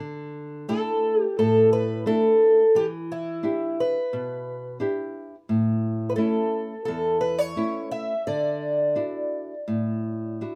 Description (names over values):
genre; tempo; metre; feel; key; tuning
fado-style ballad; 86 BPM; 4/4; rubato; D major; A4 = 444 Hz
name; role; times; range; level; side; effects
nylon-string guitar; accompaniment; 0.0-10.6 s; E2 to G4; -30 LUFS; equal; none
fingerpicked twelve-string acoustic guitar; melody; 0.7-10.4 s; E4 to E5; -25 LUFS; equal; none
room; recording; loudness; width
moderate small room reverb, RT60 0.5 s; none; -24 LUFS; mono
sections
0.0-10.6 A section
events
none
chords
0.0 Dsus2; 2.7 Em7; 5.5 A; 8.3 Dadd9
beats
0.67 1.37 2.05 | 2.74 3.44 4.12 4.80 | 5.48 6.17 6.86 7.56 | 8.26 8.96 9.68 10.42